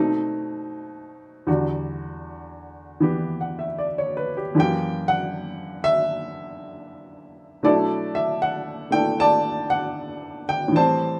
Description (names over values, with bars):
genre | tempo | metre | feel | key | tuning
solo jazz | 78 BPM | 4/4 | swing 66% on 8ths | unclear | A4 = 440 Hz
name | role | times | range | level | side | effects
clear upright piano | solo | 0.0-11.2 s | E2 to A5 | -24 LUFS | equal | none
room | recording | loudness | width
light reverb | none | -23 LUFS | mono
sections
0.0-7.6 A section; 7.6-11.2 B section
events
upright piano solo 0.0-7.6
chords
0.0 B7b9; 1.5 Em9; 4.6 F#7b9; 7.6 Bm7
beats
0.70 | 1.47 2.24 3.01 3.78 | 4.55 5.32 6.09 6.87 | 7.64 8.41 9.18 9.95 | 10.73